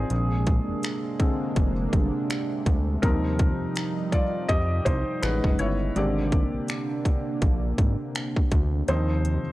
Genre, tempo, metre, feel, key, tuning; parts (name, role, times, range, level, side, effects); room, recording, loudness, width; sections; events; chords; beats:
contemporary R&B; 82 BPM; 4/4; swing 58% on 16ths; Eb major; A4 = 441 Hz
felt-muted upright piano; accompaniment; 0.0-9.5 s; D3 to Eb5; -30 LUFS; left 1 dB
chorused pulse-width pad; sustained chords; 0.0-9.5 s; C3 to D#5; -30 LUFS; right 1 dB
fat analog bass; bass; 0.0-9.5 s; F1 to F2; -26 LUFS; equal
trap drum kit; drums; 0.1-9.4 s; finger snaps, hi-hat, kick drum; -24 LUFS; equal
little or no reverb; dry, gritty hardware recording, transformer saturation, cassette tape; -22 LUFS; side -17 dB against mid
0.0-9.5 A section
felt piano solo 0.0-9.5; kick muted 8.9-9.5
0.1 Bb9; 3.0 Eb69; 5.2 Amaj9#11; 6.0 Abmaj9#11; 8.9 Eb69
| 0.10 0.83 1.56 2.30 | 3.03 3.76 4.49 5.22 | 5.96 6.69 7.42 8.15 | 8.88